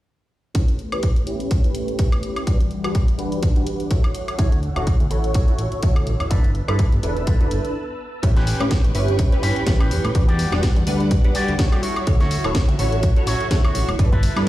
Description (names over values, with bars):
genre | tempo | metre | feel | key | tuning
filtered disco house | 125 BPM | 4/4 | swing 56% on 16ths | A mixolydian | A4 = 440 Hz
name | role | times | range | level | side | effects
funky polysynth comp | accompaniment | 0.5-14.5 s | G3 to F#5 | -26 LUFS | right 1 dB | chorus, phaser, sidechain pumping, low-pass filter
house drum kit | drums | 0.5-14.4 s | hi-hat, snare drum, woodblock | -29 LUFS | left 1 dB | sidechain pumping on hats, sidechain pumping on perc
string machine, full ensemble | sustained chords | 0.6-14.5 s | E3 to E6 | -31 LUFS | left 1 dB | ensemble chorus, sidechain pumping, low-pass filter
electronic kick drum | drums | 0.6-14.2 s | none | -18 LUFS | equal | none
electric guitar with an envelope filter | riff | 4.4-14.4 s | C#4 to D5 | -28 LUFS | equal | vintage 12-bit sampler grit, sidechain pumping, low-pass filter
fat analog bass | bass | 4.4-14.5 s | D1 to A2 | -22 LUFS | equal | sidechain pumping, low-pass filter
room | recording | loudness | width
digital ambience | played on a big sound system in a bare room, stone room reverb | -17 LUFS | side -15 dB against mid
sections
0.6-8.2 A section; 8.2-14.5 B section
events
filter sweep 0.6-8.2; break 7.8-8.2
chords
0.6 A9; 2.5 Em9; 4.2 Dmaj9; 6.3 G69; 8.2 A9; 10.2 Em9; 11.8 Dmaj9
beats
| 0.55 1.03 1.51 1.99 | 2.47 2.95 3.43 3.91 | 4.39 4.87 5.35 5.83 | 6.31 6.79 7.27 7.75 | 8.23 8.71 9.19 9.67 | 10.15 10.63 11.11 11.59 | 12.07 12.55 13.03 13.51 | 13.99 14.47